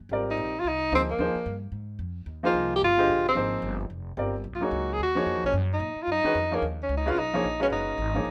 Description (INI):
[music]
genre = modal jazz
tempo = 221 BPM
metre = 4/4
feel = swing 60% on 8ths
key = unclear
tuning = A4 = 441 Hz
[part]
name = upright bass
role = bass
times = 0.0-8.3 s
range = F1 to A#2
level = -36 LUFS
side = equal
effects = none
[part]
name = clear upright piano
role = accompaniment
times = 0.1-8.2 s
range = D3 to F5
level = -32 LUFS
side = equal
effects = none
[part]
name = breathy tenor saxophone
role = melody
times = 0.3-8.3 s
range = A#3 to Ab4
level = -28 LUFS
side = equal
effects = none
[sound]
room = moderate studio reverb, RT60 0.6 s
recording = none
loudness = -27 LUFS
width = mono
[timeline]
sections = 0.1-8.3 A section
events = none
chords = 0.1 Abmaj9; 4.5 Bmaj9